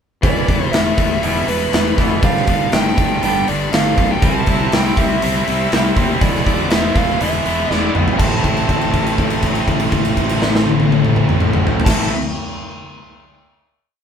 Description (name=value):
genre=quiet-loud alternative rock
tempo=121 BPM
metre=4/4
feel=straight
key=A minor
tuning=A4 = 440 Hz
part: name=nasal lead guitar with a parked wah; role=melody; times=0.2-12.1 s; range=B4 to A5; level=-22 LUFS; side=right 4 dB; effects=overdrive
part: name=twangy electric guitar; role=arpeggios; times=0.2-4.2 s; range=E2 to G3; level=-25 LUFS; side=right 7 dB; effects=none
part: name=heavy high-gain guitar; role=riff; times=0.2-12.1 s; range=G2 to E4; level=-21 LUFS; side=left 6 dB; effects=distortion
part: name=fuzz fingered electric bass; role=bass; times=0.2-12.1 s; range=E1 to D#2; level=-23 LUFS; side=right 1 dB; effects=overdrive
part: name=big rock drum kit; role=drums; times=0.2-12.0 s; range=crash cymbal, hi-hat, kick drum, snare drum, toms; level=-17 LUFS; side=left 1 dB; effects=none
part: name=heavy high-gain guitar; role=riff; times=4.2-12.1 s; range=A2 to E4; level=-22 LUFS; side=right 8 dB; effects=distortion
room=light reverb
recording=band playing live in one room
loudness=-14 LUFS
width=side -7 dB against mid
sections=0.2-8.2 pre-chorus; 8.2-12.2 final chord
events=drum fill 7.7-8.2; held note 8.2-11.9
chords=0.2 Em; 2.2 G; 4.2 C; 6.2 E; 8.2 Am